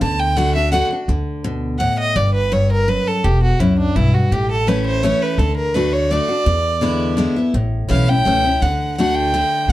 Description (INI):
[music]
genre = bluegrass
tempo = 168 BPM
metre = 3/4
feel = straight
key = D major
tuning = A4 = 440 Hz
[part]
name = clear fiddle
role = melody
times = 0.0-9.7 s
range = D4 to A5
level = -19 LUFS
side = right 1 dB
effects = none
[part]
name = picked steel-string acoustic guitar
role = accompaniment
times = 0.0-9.7 s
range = E2 to F#4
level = -19 LUFS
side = left 2 dB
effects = none
[part]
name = upright bass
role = bass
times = 0.0-9.7 s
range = E1 to E2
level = -20 LUFS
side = equal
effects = none
[sound]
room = light reverb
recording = dark, warm production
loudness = -15 LUFS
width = side -15 dB against mid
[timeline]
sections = 0.0-1.1 A section; 1.1-9.7 B section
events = fiddle solo 1.1-9.7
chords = 0.0 D; 1.1 D5; 2.2 Gmaj7; 3.2 Em; 4.3 A; 5.4 D; 6.5 E7; 7.5 A; 8.6 D